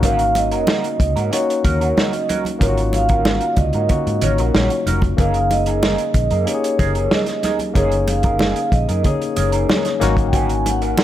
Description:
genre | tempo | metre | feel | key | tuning
lush 1970s-style soul | 93 BPM | 4/4 | straight | unclear | A4 = 441 Hz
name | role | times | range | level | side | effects
barky tine electric piano | accompaniment | 0.0-11.0 s | A#3 to G#4 | -24 LUFS | moving between left 9 dB and left 1 dB | overdrive, auto-pan
electric guitar through a small old amp | riff | 0.0-11.0 s | C#4 to A#4 | -27 LUFS | right 6 dB | wah
vintage muted fingered electric bass | bass | 0.0-10.9 s | E#1 to G#2 | -21 LUFS | equal | none
vintage drum kit | drums | 0.0-11.0 s | hi-hat, kick drum, snare drum | -20 LUFS | equal | none
congas | percussion | 0.0-11.0 s | none | -27 LUFS | right 2 dB | none
vibraphone with soft mallets | melody | 0.1-11.0 s | C#5 to G#5 | -21 LUFS | right 1 dB | analog delay
room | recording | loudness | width
studio reverb | none | -15 LUFS | side -12 dB against mid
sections
0.0-11.0 A section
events
none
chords
0.0 G#9sus4; 5.2 F#69; 10.0 G#9sus4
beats
| 0.03 0.68 1.32 1.96 | 2.61 3.25 3.89 4.54 | 5.18 5.83 6.47 7.11 | 7.76 8.40 9.04 9.69 | 10.33 10.98

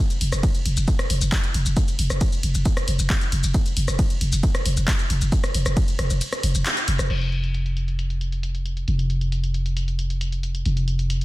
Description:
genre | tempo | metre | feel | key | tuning
driving peak-time techno | 135 BPM | 4/4 | straight | unclear | A4 = 440 Hz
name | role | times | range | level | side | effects
punchy analog drum machine | drums | 0.1-11.2 s | crash cymbal, handclaps, hi-hat, ride cymbal, rim click, shaker | -27 LUFS | equal | soft clipping on snare, low-pass filter on snare, sidechain pumping on hats, low-pass filter on hats, sidechain pumping on cymbals, low-pass filter on cymbals, sidechain pumping on perc, low-pass filter on perc, low-pass filter on room
growling 808-style bass | bass | 0.2-11.2 s | F1 | -22 LUFS | equal | sidechain pumping, low-pass filter
electronic kick drum | drums | 0.4-5.9 s | none | -21 LUFS | equal | none
room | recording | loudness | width
little or no reverb | dense, heavily limited modern master | -20 LUFS | side -18 dB against mid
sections
0.0-7.1 A section; 7.1-11.2 B section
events
drop 0.0-7.1; kick drops out 6.2-7.1; band accent 6.7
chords
none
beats
0.43 0.88 1.32 | 1.77 2.21 2.66 3.10 | 3.54 3.99 4.43 4.88 | 5.32 5.77 6.21 6.66 | 7.10 7.54 7.99 8.43 | 8.88 9.32 9.77 10.21 | 10.66 11.10

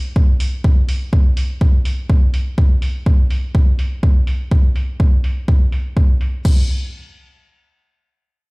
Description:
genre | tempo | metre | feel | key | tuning
melodic techno | 124 BPM | 4/4 | straight | none | none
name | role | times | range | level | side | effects
electronic kick drum | drums | 0.2-6.5 s | none | -13 LUFS | equal | overdrive, studio reverb
deep house drum kit | drums | 0.4-6.5 s | crash cymbal, hi-hat | -32 LUFS | equal | overdrive, sidechain pumping on hats, low-pass filter on hats, studio reverb, sidechain pumping on perc, low-pass filter on perc, sidechain pumping on toms, low-pass filter on toms, sidechain pumping on cymbals, low-pass filter on cymbals
room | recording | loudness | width
digital ambience | played on a big sound system in a bare room, stone room reverb | -14 LUFS | side -29 dB against mid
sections
0.0-6.5 A section; 6.5-8.5 B section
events
none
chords
none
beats
0.16 | 0.64 1.13 1.61 2.10 | 2.58 3.06 3.55 4.03 | 4.51 5.00 5.48 5.97 | 6.45

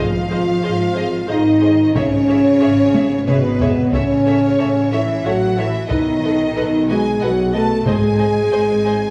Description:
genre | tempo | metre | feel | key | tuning
cinematic, epic orchestral film score | 91 BPM | 3/4 | straight | unclear | A4 = 443 Hz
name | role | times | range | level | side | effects
rich symphonic violin section | melody | 0.0-8.9 s | D#5 to E5 | -34 LUFS | equal | none
rich symphonic violin section | second line | 0.0-9.1 s | B4 to A5 | -29 LUFS | equal | none
rich studio viola section | accompaniment | 0.0-8.9 s | F#4 to C#5 | -28 LUFS | equal | none
warm French horn section | sustained chords | 0.0-9.1 s | B3 to A4 | -19 LUFS | equal | none
rich symphonic double bass section | bass | 0.0-9.1 s | G#1 to B1 | -26 LUFS | equal | none
warm symphonic cello section | bass | 0.0-9.1 s | B2 to A3 | -23 LUFS | equal | none
taiko ensemble | drums | 2.0-8.5 s | none | -24 LUFS | equal | none
room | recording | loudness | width
wet scoring stage reverb, RT60 1.9 s | studio reverb | -16 LUFS | mono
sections
0.0-9.1 A section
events
drum fill 2.9-3.9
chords
0.0 G#; 2.0 C#m/G#; 3.9 A; 5.9 B7; 7.9 G#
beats
0.65 1.30 | 1.96 2.62 3.27 | 3.93 4.59 5.25 | 5.90 6.56 7.21 | 7.87 8.53

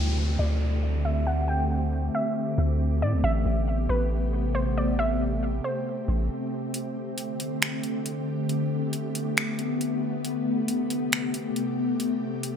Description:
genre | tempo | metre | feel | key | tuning
hip hop, atmospheric cloud-rap | 137 BPM | 4/4 | half-time | unclear | A4 = 441 Hz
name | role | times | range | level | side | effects
warbly dusty pluck | melody | 0.0-6.7 s | B4 to G5 | -31 LUFS | right 1 dB | chorus, low-pass filter, digital delay
ethereal airy pad | sustained chords | 0.0-12.6 s | C3 to G4 | -28 LUFS | left 1 dB | ensemble chorus, built-in reverb, low-pass filter
long sustained 808-style bass | bass | 0.0-6.3 s | A1 to A2 | -25 LUFS | equal | none
downlifter | sound effects | 0.0-3.2 s | none | -37 LUFS | equal | none
trap drum kit | drums | 6.7-12.5 s | finger snaps, hi-hat | -28 LUFS | equal | none
room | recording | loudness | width
light reverb | bright 1980s-style digital production | -24 LUFS | side -8 dB against mid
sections
0.0-6.7 A section; 6.7-12.6 B section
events
filter sweep 0.0-6.7; break 6.3-6.7, 6.7-12.6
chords
0.0 D7sus4; 3.2 Am9; 6.7 D7sus4; 10.2 Am9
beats
0.17 0.61 1.05 | 1.49 1.93 2.36 2.80 | 3.24 3.68 4.11 4.55 | 4.99 5.43 5.87 6.30 | 6.74 7.18 7.62 8.06 | 8.49 8.93 9.37 9.81 | 10.25 10.68 11.12 11.56 | 12.00 12.44

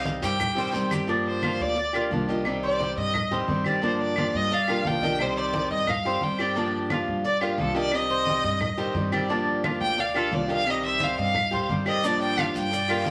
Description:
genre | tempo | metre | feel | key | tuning
latin, Cuban son and guajira | 175 BPM | 4/4 | straight | G minor | A4 = 440 Hz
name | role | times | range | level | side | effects
picked acoustic archtop guitar | accompaniment | 0.0-13.1 s | C3 to G4 | -31 LUFS | equal | none
Cuban tres | arpeggios | 0.0-13.1 s | D4 to Eb5 | -32 LUFS | equal | none
upright bass | bass | 0.0-13.1 s | C2 to G2 | -35 LUFS | equal | none
congas | percussion | 0.1-13.1 s | none | -37 LUFS | equal | none
guiro | percussion | 0.1-1.1, 12.0-13.1 s | none | -42 LUFS | equal | none
maracas | percussion | 0.1-1.1, 12.0-13.1 s | none | -49 LUFS | equal | none
clear violin | melody | 0.2-13.0 s | F4 to G5 | -29 LUFS | equal | none
claves | percussion | 0.4-13.1 s | none | -35 LUFS | equal | none
room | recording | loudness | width
wet studio reverb, RT60 0.7 s | none | -25 LUFS | mono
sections
0.0-1.1 A section; 1.1-13.1 B section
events
violin solo 1.1-13.1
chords
0.0 Cm; 1.1 Gm7; 2.5 Cm; 3.8 Gm7; 5.2 Cm; 6.6 Gm7; 7.9 Cm; 9.3 Gm7; 10.7 Cm; 12.0 Gm7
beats
0.06 0.40 0.74 | 1.09 1.43 1.77 2.11 | 2.45 2.80 3.14 3.48 | 3.82 4.16 4.51 4.85 | 5.19 5.53 5.88 6.22 | 6.56 6.90 7.24 7.59 | 7.93 8.27 8.61 8.96 | 9.30 9.64 9.98 10.33 | 10.67 11.01 11.35 11.70 | 12.04 12.38 12.72 13.07

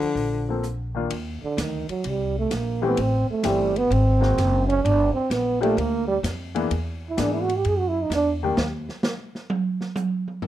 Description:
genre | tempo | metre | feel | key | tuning
jazz, small-group swing and bop | 129 BPM | 4/4 | swing 68% on 8ths | unclear | A4 = 440 Hz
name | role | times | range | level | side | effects
growling baritone saxophone | melody | 0.0-0.7 s | D3 | -26 LUFS | left 4 dB | plate reverb
breathy trombone | second line | 0.0-8.3 s | D3 to G#4 | -23 LUFS | right 4 dB | none
upright bass | bass | 0.0-8.9 s | Gb1 to G#2 | -26 LUFS | equal | none
open jazz drum kit | drums | 0.0-10.5 s | hi-hat, ride cymbal, rim click, snare drum, toms | -29 LUFS | right 2 dB | none
warm upright piano | accompaniment | 0.5-8.6 s | Eb3 to A4 | -26 LUFS | left 4 dB | none
room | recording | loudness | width
light reverb | dark, warm production | -21 LUFS | side -12 dB against mid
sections
0.0-1.1 A section; 1.1-10.5 B section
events
trombone solo 1.1-10.5; drum solo 8.6-10.5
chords
0.0 Gm7 (rootless); 1.1 Ebmaj7; 3.0 Am7; 3.9 Ab9; 4.8 Gm7; 6.7 E7#11; 8.6 N.C.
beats
0.18 0.65 | 1.11 1.58 2.05 2.52 | 2.98 3.45 3.92 4.38 | 4.85 5.32 5.78 6.25 | 6.71 7.18 7.65 8.11 | 8.58 9.04 9.51 9.98 | 10.44

